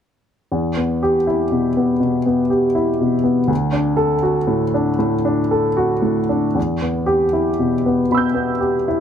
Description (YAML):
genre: neoclassical minimalist piano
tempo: 79 BPM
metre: 4/4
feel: rubato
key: E minor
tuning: A4 = 440 Hz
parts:
  - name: warm upright piano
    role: solo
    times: 0.5-9.0 s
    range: D2 to G6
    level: -16 LUFS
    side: equal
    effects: none
room: light reverb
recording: none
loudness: -16 LUFS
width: side -8 dB against mid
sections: 0.5-6.6 A section; 6.6-9.0 B section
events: none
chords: 0.5 Em; 3.5 D; 6.6 Em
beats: | 0.51 1.27 2.02 2.77 | 3.50 4.25 5.00 5.77 | 6.57 7.33 8.10 8.86